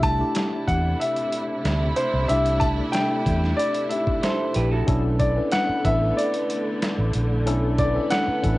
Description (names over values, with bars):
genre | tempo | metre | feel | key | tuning
lush 1970s-style soul | 93 BPM | 4/4 | straight | B phrygian | A4 = 439 Hz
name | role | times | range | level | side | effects
warm concert grand piano | melody | 0.0-8.6 s | C5 to A5 | -24 LUFS | left 1 dB | none
tine electric piano | accompaniment | 0.0-8.6 s | A3 to B4 | -28 LUFS | left 2 dB | overdrive, fast stereo tremolo, cassette tape
clear studio string section | sustained chords | 0.0-8.6 s | C3 to E4 | -30 LUFS | right 1 dB | cassette tape
vintage muted fingered electric bass | bass | 0.0-8.6 s | A1 to E2 | -23 LUFS | equal | none
boom bap sampler-style drum kit | drums | 0.0-8.6 s | hi-hat, kick drum, snare drum | -27 LUFS | equal | cassette tape
electric guitar through a small old amp | riff | 4.2-5.0 s | F#4 to C5 | -27 LUFS | right 3 dB | cassette tape
room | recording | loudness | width
light reverb | home recording on cassette, nothing above 11.0 kHz | -20 LUFS | side -18 dB against mid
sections
0.0-4.9 A section; 4.9-8.6 B section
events
none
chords
0.0 C69; 4.9 Bm11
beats
0.36 1.00 1.65 | 2.30 2.94 3.59 4.24 | 4.88 5.53 6.18 6.82 | 7.47 8.12